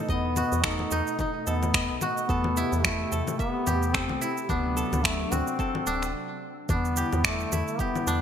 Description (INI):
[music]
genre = organic downtempo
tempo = 109 BPM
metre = 4/4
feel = swing 56% on 16ths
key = E minor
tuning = A4 = 440 Hz
[part]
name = airy breathy pad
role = sustained chords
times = 0.0-8.2 s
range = B2 to D#5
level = -35 LUFS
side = right 1 dB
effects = chorus, sidechain pumping
[part]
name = kora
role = arpeggios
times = 0.0-8.2 s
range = D4 to E5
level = -32 LUFS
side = equal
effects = digital delay
[part]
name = mellow duduk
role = melody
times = 0.1-8.2 s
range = A3 to D#4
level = -30 LUFS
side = left 2 dB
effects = digital delay
[part]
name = woody FM bass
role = bass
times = 0.1-8.2 s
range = D1 to E2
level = -30 LUFS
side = equal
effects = sidechain pumping
[part]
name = electronic kick drum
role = drums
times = 0.1-7.9 s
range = none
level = -32 LUFS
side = equal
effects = small room ambience
[part]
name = electronic shaker, congas and finger snaps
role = drums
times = 0.1-8.2 s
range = none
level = -29 LUFS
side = equal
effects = small room ambience, gated reverb
[sound]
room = moderate lush hall reverb, RT60 2.4 s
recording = bright 1980s-style digital production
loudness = -24 LUFS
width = side -8 dB against mid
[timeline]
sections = 0.0-6.7 A section; 6.7-8.2 A section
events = stop 6.1-6.7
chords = 0.0 B7; 2.3 Am7/E; 4.5 D7; 6.7 Em7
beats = | 0.09 0.64 1.19 1.74 | 2.29 2.84 3.39 3.94 | 4.49 5.04 5.59 6.14 | 6.69 7.24 7.79